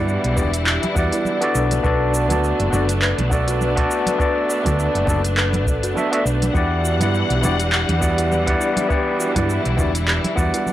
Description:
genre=sunset chillout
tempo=102 BPM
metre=4/4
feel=swing 56% on 16ths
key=E minor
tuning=A4 = 440 Hz
part: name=overdriven tine electric piano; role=accompaniment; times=0.0-10.7 s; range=G3 to F#5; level=-22 LUFS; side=equal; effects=auto-pan, analog delay
part: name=warm studio string section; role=sustained chords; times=0.0-10.7 s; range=E3 to F#5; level=-24 LUFS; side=left 2 dB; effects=none
part: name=kalimba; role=arpeggios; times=0.0-10.7 s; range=D4 to B4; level=-28 LUFS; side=right 2 dB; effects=low-pass filter, analog delay
part: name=hollow-body short-scale fingered electric bass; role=bass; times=0.0-10.5 s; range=E1 to G2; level=-21 LUFS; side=equal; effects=none
part: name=deep house drum kit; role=drums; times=0.1-10.7 s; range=handclaps, hi-hat, shaker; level=-24 LUFS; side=equal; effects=none
part: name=electronic kick drum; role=drums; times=0.4-10.5 s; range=none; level=-23 LUFS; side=equal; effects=none
part: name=congas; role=percussion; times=0.4-10.7 s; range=none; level=-28 LUFS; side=right 2 dB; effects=none
room=little or no reverb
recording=dry, gritty hardware recording, transformer saturation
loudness=-17 LUFS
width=side -13 dB against mid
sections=0.0-10.7 A section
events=filter sweep on kalimba 0.0-10.7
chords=0.0 Em9; 1.6 Bm7; 6.6 Em9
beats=0.08 0.67 1.26 | 1.84 2.43 3.02 3.61 | 4.20 4.79 5.37 5.96 | 6.55 7.14 7.73 8.31 | 8.90 9.49 10.08 10.67

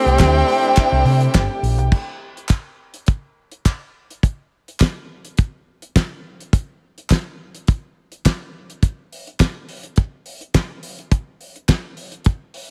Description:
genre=disco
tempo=104 BPM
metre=4/4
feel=straight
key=C major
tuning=A4 = 444 Hz
part: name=breathy tenor saxophone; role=melody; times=0.0-1.6 s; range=C4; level=-22 LUFS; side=equal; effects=none
part: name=warm studio violin section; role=second line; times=0.0-1.9 s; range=G4 to G5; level=-23 LUFS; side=equal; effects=none
part: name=warm studio string section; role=sustained chords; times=0.0-1.9 s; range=C3 to E4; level=-28 LUFS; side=equal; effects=none
part: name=hollow-body short-scale fingered electric bass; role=bass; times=0.1-1.9 s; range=G1 to C3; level=-19 LUFS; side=equal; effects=none
part: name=damped 70s drum kit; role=drums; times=0.1-12.7 s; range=crash cymbal, hi-hat, kick drum, snare drum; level=-19 LUFS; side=equal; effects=none
part: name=group handclap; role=percussion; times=0.2-11.8 s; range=none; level=-32 LUFS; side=equal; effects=none
room=small room ambience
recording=none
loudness=-20 LUFS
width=mono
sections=0.0-1.9 A section; 1.9-12.7 B section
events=none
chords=0.0 C69; 1.9 N.C.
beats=0.20 0.77 1.35 | 1.92 2.50 3.07 3.65 | 4.23 4.80 5.38 5.95 | 6.53 7.10 7.68 8.25 | 8.82 9.40 9.97 10.54 | 11.12 11.69 12.26

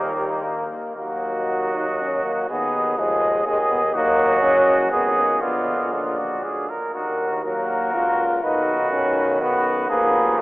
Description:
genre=classical, brass quintet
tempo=121 BPM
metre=3/4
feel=rubato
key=Eb minor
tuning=A4 = 440 Hz
part: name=mellow trumpet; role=melody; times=0.0-10.4 s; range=Eb4 to Eb5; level=-26 LUFS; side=left 1 dB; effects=none
part: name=clear flugelhorn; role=second line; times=0.0-10.4 s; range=Bb3 to Bb4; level=-24 LUFS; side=right 2 dB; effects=none
part: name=clear trombone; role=accompaniment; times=0.0-10.4 s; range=Bb2 to Gb3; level=-28 LUFS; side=right 1 dB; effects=none
part: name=mellow French horn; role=accompaniment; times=0.0-10.4 s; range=G3 to F4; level=-23 LUFS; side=left 1 dB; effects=none
part: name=bright bass trombone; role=bass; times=0.0-10.4 s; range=F1 to Eb2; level=-30 LUFS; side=equal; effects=none
room=wet cathedral reverb, RT60 6.1 s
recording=telephone sound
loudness=-18 LUFS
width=side -20 dB against mid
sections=1.0-10.4 A section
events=none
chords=0.0 Eb; 1.0 Ebm; 2.5 Abm/Eb; 3.9 Ebm; 4.9 Abm; 5.4 Bb; 6.9 Ebm; 8.4 B; 9.9 Fdim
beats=0.44 | 0.97 1.49 1.99 | 2.49 2.98 3.46 | 3.94 4.43 4.92 | 5.42 5.93 6.43 | 6.94 7.44 7.94 | 8.43 8.92 9.41 | 9.90 10.39

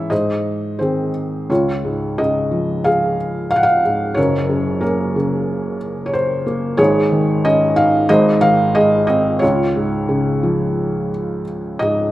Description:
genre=classical, lyrical solo piano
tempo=90 BPM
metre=4/4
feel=rubato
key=Db major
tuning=A4 = 440 Hz
part: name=felt-muted upright piano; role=solo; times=0.0-12.1 s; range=Gb1 to Gb5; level=-15 LUFS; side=equal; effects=none
room=light reverb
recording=none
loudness=-15 LUFS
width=side -15 dB against mid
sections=0.0-1.5 A section; 1.5-12.1 B section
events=none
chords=0.1 G#; 1.5 Db; 4.2 Gb; 6.8 Absus4; 8.1 Ab; 9.4 Db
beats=0.11 0.81 | 1.50 2.18 2.86 3.52 | 4.17 4.83 5.49 6.14 | 6.79 7.44 8.09 8.75 | 9.42 10.09 10.77 11.47

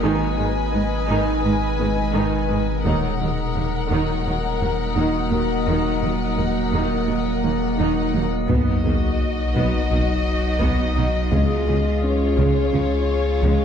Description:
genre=cinematic, hybrid orchestral and electronic film score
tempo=85 BPM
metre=4/4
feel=straight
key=Eb minor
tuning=A4 = 441 Hz
part: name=warm symphonic violin section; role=second line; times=0.0-13.6 s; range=F4 to Ab5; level=-28 LUFS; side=left 6 dB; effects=none
part: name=warm symphonic viola section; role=accompaniment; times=0.0-13.6 s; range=Db3 to Eb4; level=-27 LUFS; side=right 2 dB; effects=none
part: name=metallic inharmonic drone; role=sustained chords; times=0.0-13.6 s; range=Cb3 to Eb5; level=-26 LUFS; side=right 1 dB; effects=chorus, built-in reverb
part: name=soft dub sub bass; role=bass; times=0.0-13.6 s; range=Eb1 to Db2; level=-25 LUFS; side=equal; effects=none
part: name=warm studio cello section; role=bass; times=0.0-13.5 s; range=Eb2 to Db3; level=-26 LUFS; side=right 3 dB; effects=none
part: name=felt-muted upright piano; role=texture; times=0.0-13.6 s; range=Ab3 to Bb5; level=-33 LUFS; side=equal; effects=none
part: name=taiko ensemble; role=drums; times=2.9-4.2, 8.5-13.6 s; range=none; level=-27 LUFS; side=left 1 dB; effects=none
part: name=warm symphonic violin section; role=melody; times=8.5-13.6 s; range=Db5 to D#5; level=-28 LUFS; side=left 3 dB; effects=none
part: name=mellow French horn section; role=sustained chords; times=8.5-13.6 s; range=F#3 to Ab4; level=-26 LUFS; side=left 4 dB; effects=none
part: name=rich symphonic double bass section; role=bass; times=8.5-13.5 s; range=B1 to Db2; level=-27 LUFS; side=right 3 dB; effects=none
part: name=sub drop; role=sound effects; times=8.5-11.3 s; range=none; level=-29 LUFS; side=left 1 dB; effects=none
room=moderate concert hall reverb, RT60 2.1 s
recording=dark, warm production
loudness=-18 LUFS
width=side -8 dB against mid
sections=0.0-8.5 A section; 8.5-13.6 B section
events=impact 8.5-11.3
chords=0.0 Abm; 2.8 Ebm; 8.5 B; 11.3 Db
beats=| 0.02 0.73 1.44 2.14 | 2.85 3.55 4.26 4.96 | 5.67 6.38 7.08 7.79 | 8.49 9.20 9.91 10.61 | 11.32 12.02 12.73 13.44

